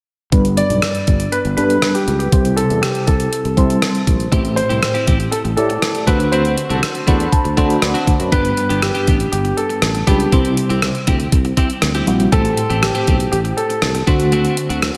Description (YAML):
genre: 1980s-style pop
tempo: 120 BPM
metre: 4/4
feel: straight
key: G major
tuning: A4 = 439 Hz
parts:
  - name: mellow FM electric piano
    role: accompaniment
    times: 0.3-15.0 s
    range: G2 to B5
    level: -22 LUFS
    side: equal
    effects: chorus, tremolo, phaser
  - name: sustaining fretless electric bass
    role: bass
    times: 0.3-14.9 s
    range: G1 to D3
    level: -23 LUFS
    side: equal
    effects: none
  - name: clean 12-bit digital drum machine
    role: drums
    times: 0.3-15.0 s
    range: hi-hat, kick drum, rim click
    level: -20 LUFS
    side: equal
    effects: none
  - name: warm grand piano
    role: melody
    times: 0.6-14.8 s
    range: F#4 to D5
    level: -23 LUFS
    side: equal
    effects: none
  - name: clean electric guitar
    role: riff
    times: 4.3-15.0 s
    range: A3 to G4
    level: -26 LUFS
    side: equal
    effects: analog chorus, analog delay
  - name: analog synth brass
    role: stabs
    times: 6.7-7.3 s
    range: D4 to A4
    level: -28 LUFS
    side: equal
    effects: chorus, analog delay
room: moderate lush hall reverb, RT60 1.8 s, digital ambience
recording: dreamy mix soaked in reverb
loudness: -16 LUFS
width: mono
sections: 0.3-8.3 A section; 8.3-15.0 B section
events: band accent 6.3-8.3; FM electric piano fill 6.8-8.3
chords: 0.3 G; 2.3 C; 4.3 Am7; 6.1 D7; 8.3 G; 10.3 C; 12.3 Am7; 14.1 D7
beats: | 0.33 0.82 1.32 1.82 | 2.33 2.83 3.33 3.83 | 4.33 4.83 5.33 5.83 | 6.33 6.83 7.33 7.83 | 8.32 8.82 9.32 9.82 | 10.32 10.82 11.32 11.82 | 12.32 12.82 13.32 13.82 | 14.32 14.82